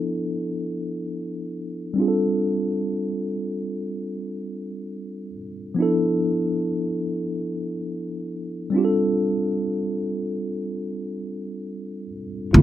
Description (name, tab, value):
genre	R&B, neo-soul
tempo	free time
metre	none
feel	none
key	unclear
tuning	A4 = 440 Hz
part	mellow tine electric piano	accompaniment	0.0-12.6 s	F3 to A4	-24 LUFS	equal	medium stereo tremolo, low-pass filter
part	upright bass	bass	12.5-12.6 s	D2	-9 LUFS	equal	none
room	light reverb, studio reverb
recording	none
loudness	-23 LUFS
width	side -12 dB against mid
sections	0.0-12.5 A section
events	filter sweep on tine electric piano 0.0-12.5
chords	0.0 Dm69; 2.0 F69; 5.8 Dm69; 8.7 F69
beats	free time